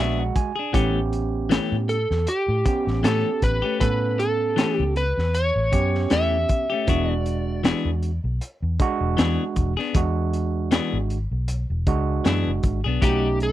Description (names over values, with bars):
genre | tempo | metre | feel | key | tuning
straight-eighth soul blues | 78 BPM | 4/4 | swing 56% on 16ths | E mixolydian | A4 = 440 Hz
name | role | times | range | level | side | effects
overdriven tine electric piano | accompaniment | 0.0-13.5 s | G#3 to G#5 | -27 LUFS | right 7 dB | none
clean electric guitar | stabs | 0.0-13.3 s | E3 to G#4 | -25 LUFS | left 6 dB | none
vintage muted fingered electric bass | bass | 0.0-13.5 s | E1 to A2 | -24 LUFS | equal | none
crunchy breakbeat drum kit | drums | 0.4-13.5 s | hi-hat, kick drum, snare drum | -23 LUFS | equal | none
electric slide guitar | melody | 1.9-7.6, 13.0-13.5 s | G4 to E5 | -24 LUFS | equal | none
room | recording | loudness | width
little or no reverb | dry, close 1970s-style studio recording | -20 LUFS | side -14 dB against mid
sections
0.0-13.5 A section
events
tine electric piano fill 0.0-0.7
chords
0.0 E7; 0.7 A7; 6.9 E7; 13.0 B7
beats
| 0.74 1.51 2.27 3.04 | 3.81 4.58 5.34 6.11 | 6.88 7.64 8.41 9.18 | 9.95 10.71 11.48 12.25 | 13.02